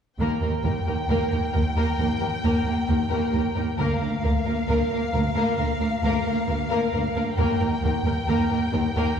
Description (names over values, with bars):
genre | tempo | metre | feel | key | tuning
cinematic | 67 BPM | 4/4 | straight | Eb major | A4 = 438 Hz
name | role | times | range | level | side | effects
warm symphonic violin section | melody | 0.2-9.2 s | F5 to G5 | -31 LUFS | left 4 dB | none
warm symphonic violin section | second line | 0.2-9.2 s | Bb4 | -30 LUFS | left 2 dB | none
clear symphonic viola section | accompaniment | 0.2-9.2 s | Bb3 | -28 LUFS | equal | none
rich symphonic cello section | bass | 0.2-9.0 s | D2 to Eb2 | -27 LUFS | right 1 dB | none
rich symphonic double bass section | bass | 0.2-9.2 s | D2 to Eb2 | -27 LUFS | right 1 dB | none
room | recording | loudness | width
wet scoring stage reverb, RT60 1.7 s | heard from further back in the room | -21 LUFS | side -7 dB against mid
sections
0.2-9.2 A section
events
none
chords
0.2 Eb; 3.8 Bb/D; 7.4 Eb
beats
| 0.20 1.10 2.00 2.90 | 3.79 4.69 5.59 6.49 | 7.39 8.29 9.19